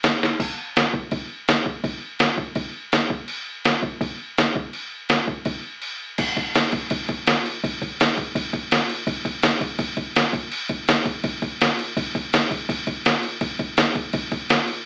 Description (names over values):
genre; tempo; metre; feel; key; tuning
punk; 166 BPM; 4/4; straight; none; none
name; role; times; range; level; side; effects
trip hop sampler-style drum kit; drums; 0.0-14.8 s; crash cymbal, kick drum, snare drum, splash cymbal; -23 LUFS; equal; none
room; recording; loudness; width
light reverb; band playing live in one room, AM radio sound; -23 LUFS; mono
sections
0.0-6.2 A section; 6.2-14.9 B section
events
drum fill 0.2; break 5.8-6.2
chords
none